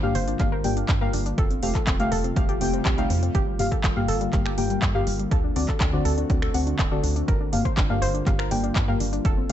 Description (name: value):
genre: progressive house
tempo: 122 BPM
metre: 4/4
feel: straight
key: G minor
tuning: A4 = 440 Hz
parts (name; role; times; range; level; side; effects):
- airy breathy pad; sustained chords; 0.0-9.5 s; C3 to F#4; -33 LUFS; right 1 dB; chorus, sidechain pumping
- soft round pluck; arpeggios; 0.0-9.5 s; G3 to C5; -30 LUFS; left 1 dB; chorus, sidechain pumping, tape echo
- deep mellow chord stab; stabs; 0.0-9.5 s; G2 to G5; -27 LUFS; left 2 dB; chorus, sidechain pumping, tape echo
- tight sequencer bass; bass; 0.0-9.5 s; D1 to G2; -29 LUFS; equal; sidechain pumping
- pop drum kit; drums; 0.1-9.5 s; finger snaps, handclaps, hi-hat; -31 LUFS; equal; sidechain pumping on hats
- electronic kick drum; drums; 0.4-9.3 s; none; -24 LUFS; equal; overdrive
- swell; sound effects; 2.6-3.3 s; none; -36 LUFS; left 1 dB; none
room: digital ambience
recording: nothing above 8.0 kHz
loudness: -21 LUFS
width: side -11 dB against mid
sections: 0.0-9.5 A section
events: swell 2.6-3.3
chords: 0.0 Gm7; 1.4 Fadd9; 3.3 Gm7; 5.3 D7; 7.3 Gm7